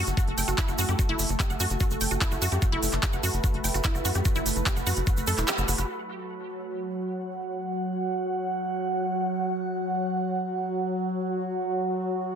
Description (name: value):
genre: psychedelic trance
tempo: 147 BPM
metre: 4/4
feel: straight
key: F# minor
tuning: A4 = 440 Hz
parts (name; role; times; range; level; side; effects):
- evolving wavetable pad; sustained chords; 0.0-12.4 s; F#3 to B4; -31 LUFS; equal; phaser, built-in reverb, sidechain pumping
- wide unison pluck; riff; 0.0-5.8 s; E4 to G5; -31 LUFS; right 1 dB; auto-pan, sidechain pumping, dub echo
- tight sequencer bass; bass; 0.0-5.8 s; E1 to F#2; -28 LUFS; equal; none
- techno drum kit; drums; 0.1-12.4 s; handclaps, hi-hat; -31 LUFS; right 1 dB; low-pass filter on hats, low-pass filter on cymbals, low-pass filter on snare, low-pass filter on room
- egg shaker; percussion; 0.1-5.9 s; none; -35 LUFS; right 4 dB; none
- electronic kick drum; drums; 0.2-5.2 s; none; -26 LUFS; equal; none
- airy breathy pad; texture; 6.1-12.4 s; F#4 to F#5; -31 LUFS; right 2 dB; chorus, sidechain pumping
room: moderate digital room reverb, RT60 1.1 s, digital ambience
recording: dense, heavily limited modern master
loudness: -25 LUFS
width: side -8 dB against mid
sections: 0.0-5.9 A section; 5.9-12.4 B section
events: kick drops out 5.5-5.9; band accent 5.5; filter sweep on ambient pad 5.9-12.4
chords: 0.0 Esus4 (rootless); 5.9 F#5